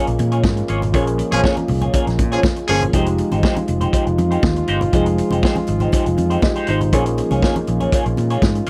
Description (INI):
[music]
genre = disco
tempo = 120 BPM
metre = 4/4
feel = straight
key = unclear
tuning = A4 = 439 Hz
[part]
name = clean electric guitar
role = accompaniment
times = 0.0-8.7 s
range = Ab3 to Db5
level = -27 LUFS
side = equal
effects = wah
[part]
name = dark concert grand piano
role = accompaniment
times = 0.0-8.7 s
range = F3 to Eb5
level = -26 LUFS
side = equal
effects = none
[part]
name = mellow French horn section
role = sustained chords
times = 0.0-8.7 s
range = Db3 to F4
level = -26 LUFS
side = equal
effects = none
[part]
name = fingered electric bass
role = bass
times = 0.1-8.6 s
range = F1 to Bb2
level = -22 LUFS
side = equal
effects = none
[part]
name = vintage drum kit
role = drums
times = 0.1-8.7 s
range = hi-hat, kick drum, snare drum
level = -22 LUFS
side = equal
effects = none
[part]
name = congas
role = percussion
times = 0.2-8.5 s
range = none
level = -30 LUFS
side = equal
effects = none
[part]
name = clear horn section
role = stabs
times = 1.3-2.8 s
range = F3 to Ab4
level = -23 LUFS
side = equal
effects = none
[sound]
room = small room ambience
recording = dry, close 1970s-style studio recording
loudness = -18 LUFS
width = mono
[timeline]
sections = 0.0-8.7 A section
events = band accent 0.9-2.9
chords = 0.0 Bbm7; 2.9 Fm9; 6.9 Bbm7